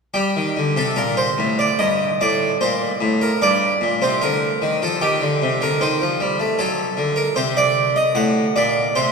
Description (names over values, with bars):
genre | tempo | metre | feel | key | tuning
classical, baroque-style suite movement for harpsichord | 75 BPM | 4/4 | rubato | G minor | A4 = 440 Hz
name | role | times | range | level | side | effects
harpsichord | solo | 0.1-9.1 s | G2 to F#5 | -17 LUFS | equal | none
room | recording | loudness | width
wet cathedral reverb, RT60 6.9 s | recorded in a church or concert hall | -17 LUFS | side -4 dB against mid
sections
0.1-9.1 A section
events
none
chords
0.1 Gm; 3.4 Cm/G; 6.6 D7